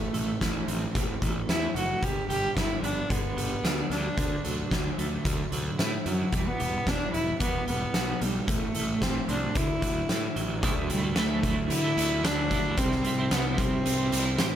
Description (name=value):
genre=quiet-loud alternative rock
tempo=112 BPM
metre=4/4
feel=straight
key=unclear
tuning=A4 = 440 Hz
part: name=warm cello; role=melody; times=0.0-14.6 s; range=F#3 to G4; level=-30 LUFS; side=equal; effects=none
part: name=twelve-string electric guitar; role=arpeggios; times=0.0-14.6 s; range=G2 to F#4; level=-34 LUFS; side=right 4 dB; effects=tremolo
part: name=fuzz picked electric bass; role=bass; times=0.0-14.6 s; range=E1 to D3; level=-32 LUFS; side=equal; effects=overdrive
part: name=oversized low-tuned drum kit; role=drums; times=0.1-14.5 s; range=hi-hat, kick drum, snare drum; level=-29 LUFS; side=equal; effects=none
room=light reverb, small room ambience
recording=none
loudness=-25 LUFS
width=side -10 dB against mid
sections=0.0-10.6 A section; 10.6-14.6 B section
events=none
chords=0.0 Am; 2.0 G; 4.2 Dadd9; 6.3 Emadd9; 8.5 Am; 9.6 Dadd9; 12.8 C